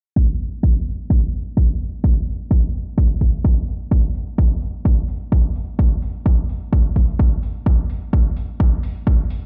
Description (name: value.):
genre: house.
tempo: 128 BPM.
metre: 4/4.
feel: swing 57% on 16ths.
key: none.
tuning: none.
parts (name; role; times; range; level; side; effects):
electronic kick drum; drums; 0.2-9.2 s; none; -18 LUFS; equal; none.
electronic hi-hat; drums; 0.4-9.4 s; none; -55 LUFS; equal; low-pass filter on hats, low-pass filter on room.
room: little or no reverb.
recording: played on a big sound system in a bare room, large studio reverb, low-pass filter.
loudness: -19 LUFS.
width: mono.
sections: 0.2-9.5 A section.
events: filter sweep on drum 0.2-9.5; filter sweep 0.2-9.5.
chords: none.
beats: | 0.16 0.63 1.10 1.57 | 2.04 2.51 2.98 3.44 | 3.91 4.38 4.85 5.32 | 5.79 6.26 6.73 7.20 | 7.66 8.13 8.60 9.07.